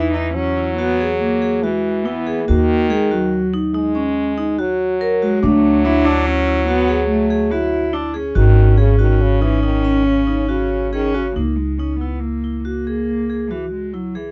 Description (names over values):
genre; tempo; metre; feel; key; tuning
contemporary instrumental, chamber music in an uneven meter; 142 BPM; 7/4; straight; C# dorian; A4 = 440 Hz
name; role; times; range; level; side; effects
warm cello; melody; 0.0-14.3 s; E3 to E4; -23 LUFS; equal; none
stopped French horn; second line; 0.0-11.4 s; C#3 to G#3; -25 LUFS; equal; none
vibraphone with medium hard mallets; arpeggios; 0.0-14.3 s; C#4 to A#4; -22 LUFS; equal; none
upright bass; bass; 0.0-14.3 s; G#1 to E2; -22 LUFS; equal; none
room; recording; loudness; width
light reverb; dark, warm production, nothing above 8.0 kHz; -18 LUFS; mono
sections
0.0-11.4 A section; 11.4-14.3 B section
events
none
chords
0.0 Eadd9; 2.5 D#m; 5.4 D; 8.4 G#sus4; 11.4 C#m69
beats
0.36 0.79 1.21 1.64 2.06 | 2.49 2.91 3.33 3.75 4.17 4.59 5.01 | 5.43 5.84 6.26 6.68 7.10 7.52 7.94 | 8.36 8.78 9.21 9.63 10.05 10.49 10.92 | 11.36 11.79 12.23 12.66 13.09 13.52 13.95